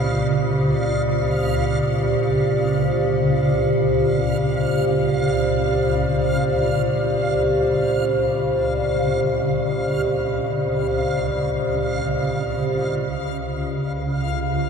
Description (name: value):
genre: dark ambient drone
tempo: free time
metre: none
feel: none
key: unclear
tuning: A4 = 443 Hz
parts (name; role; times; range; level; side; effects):
- dark analog pad; sustained chords; 0.0-14.7 s; A#2 to D5; -21 LUFS; equal; chorus
- swarming drone; drone; 0.0-14.7 s; C#2 to C#3; -23 LUFS; equal; built-in reverb
- backwards swelling texture; texture; 0.0-14.7 s; E#5; -30 LUFS; equal; built-in reverb
room: wet huge ambient reverb, RT60 7.4 s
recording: dark, warm production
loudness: -18 LUFS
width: side -6 dB against mid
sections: 0.0-13.1 A section; 13.1-14.7 B section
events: none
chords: 0.0 A#; 13.1 C#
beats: free time